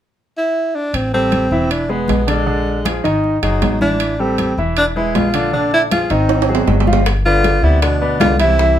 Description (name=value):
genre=Afro-Cuban jazz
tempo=157 BPM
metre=4/4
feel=straight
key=unclear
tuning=A4 = 439 Hz
part: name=breathy tenor saxophone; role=melody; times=0.4-8.8 s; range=G#3 to F4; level=-17 LUFS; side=equal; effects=none
part: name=upright bass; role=bass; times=0.9-8.8 s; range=E1 to D2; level=-19 LUFS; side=equal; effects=none
part: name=congas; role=percussion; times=0.9-8.8 s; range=none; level=-22 LUFS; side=left 2 dB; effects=none
part: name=timbales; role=percussion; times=0.9-8.6 s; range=none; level=-22 LUFS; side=right 7 dB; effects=none
part: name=clear grand piano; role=accompaniment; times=1.1-8.8 s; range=D3 to F5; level=-19 LUFS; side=equal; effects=none
part: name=bongos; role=percussion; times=7.1-8.8 s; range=none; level=-24 LUFS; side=left 6 dB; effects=none
part: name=mellow trombone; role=second line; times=7.3-8.8 s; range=B2 to D3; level=-22 LUFS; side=right 4 dB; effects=none
room=moderate studio reverb, RT60 0.6 s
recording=none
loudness=-13 LUFS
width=side -10 dB against mid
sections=0.9-7.1 A section; 7.1-8.8 B section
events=drum fill 6.3-7.1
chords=0.0 N.C.; 0.9 Am7; 1.7 E7; 2.5 Bb7; 3.2 Ab5; 4.0 Am7; 4.8 E7b9; 5.5 Bb7; 6.3 Ab6; 7.1 G6